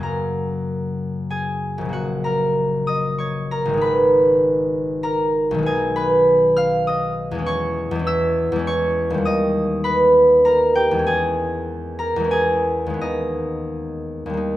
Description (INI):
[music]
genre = classical, solo harp piece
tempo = 84-103 BPM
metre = 3/4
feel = rubato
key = F# major, G# minor from 7.5 s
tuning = A4 = 440 Hz
[part]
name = concert harp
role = solo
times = 0.0-14.6 s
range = G#1 to E#6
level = -17 LUFS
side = equal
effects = none
[sound]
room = moderate recital hall reverb, RT60 1.5 s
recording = minimal, uncompressed stereo recording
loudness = -17 LUFS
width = side -14 dB against mid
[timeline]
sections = 0.0-14.6 A section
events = none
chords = 0.0 F#; 1.9 F#/A#; 3.8 G#m; 5.7 G#m/B; 7.5 C#m/E; 9.2 D#; 11.1 C#m/E; 13.0 G#m/D#